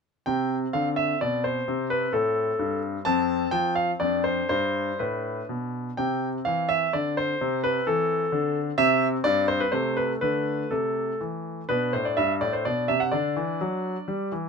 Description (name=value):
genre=classical-period piano sonatina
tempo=120-132 BPM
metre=3/4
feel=rubato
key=C major, G major from 8.8 s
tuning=A4 = 440 Hz
part: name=bright concert grand piano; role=solo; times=0.3-14.5 s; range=F2 to A5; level=-23 LUFS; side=equal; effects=none
room=light reverb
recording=minimal, uncompressed stereo recording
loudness=-23 LUFS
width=side -5 dB against mid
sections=0.3-11.7 A section; 11.7-14.5 B section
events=none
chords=0.3 C5; 1.7 Am; 3.1 F; 4.0 Dm/F; 4.5 G; 6.0 C; 9.7 Am/C; 10.2 D5; 11.7 G; 13.1 D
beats=| 0.26 0.73 1.21 | 1.67 2.13 2.59 | 3.05 3.52 4.00 | 4.49 5.00 5.49 | 5.98 6.46 6.94 | 7.41 7.87 8.33 | 8.79 9.25 9.72 | 10.21 10.71 11.20 | 11.70 12.18 12.65 | 13.13 13.61 14.08